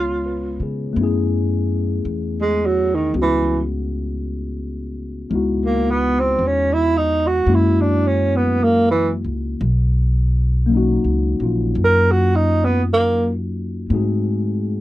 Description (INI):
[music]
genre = jazz ballad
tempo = 56 BPM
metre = 4/4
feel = swing 66% on 8ths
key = unclear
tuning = A4 = 439 Hz
[part]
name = breathy tenor saxophone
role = melody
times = 0.0-13.3 s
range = D#3 to A#4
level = -17 LUFS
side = right 2 dB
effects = none
[part]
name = tine electric piano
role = accompaniment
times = 0.0-14.8 s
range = F#3 to C#5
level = -23 LUFS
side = left 4 dB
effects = overdrive, lush chorus
[part]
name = upright bass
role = bass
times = 0.0-14.8 s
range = A#1 to C#3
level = -21 LUFS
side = equal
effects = none
[sound]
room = light reverb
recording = dry, close 1970s-style studio recording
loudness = -16 LUFS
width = side -16 dB against mid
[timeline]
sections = 1.0-14.8 A section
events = tenor saxophone solo 1.0-14.8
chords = 0.0 C#7; 1.0 F#m11; 5.3 C#m11; 7.5 F#7; 9.6 Bmaj9; 13.9 G#7b9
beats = | 0.97 2.06 3.15 4.23 | 5.31 6.39 7.46 8.54 | 9.62 10.69 11.77 12.84 | 13.91